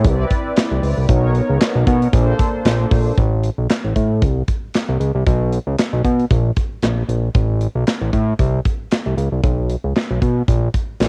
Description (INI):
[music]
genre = early-eighties boogie funk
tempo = 115 BPM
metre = 4/4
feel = swing 56% on 16ths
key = unclear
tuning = A4 = 437 Hz
[part]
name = mellow synth brass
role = accompaniment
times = 0.0-3.2 s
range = Bb3 to D5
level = -24 LUFS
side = equal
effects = chorus, cassette tape
[part]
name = fat analog bass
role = bass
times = 0.0-11.1 s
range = A1 to B2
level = -19 LUFS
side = equal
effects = none
[part]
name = modern studio drum kit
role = drums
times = 0.0-11.1 s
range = handclaps, hi-hat, kick drum, snare drum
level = -21 LUFS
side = equal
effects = cassette tape
[sound]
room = studio reverb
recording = home recording on cassette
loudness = -18 LUFS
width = mono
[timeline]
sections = 0.0-3.2 A section; 3.2-11.1 B section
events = none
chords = 0.0 Cmaj9; 1.1 Bmaj9; 2.1 Bbmaj9; 3.2 Asus2; 4.2 N.C.; 5.3 Bsus2; 6.3 N.C.; 7.3 Asus2; 8.4 N.C.; 9.4 Bsus2; 10.5 N.C.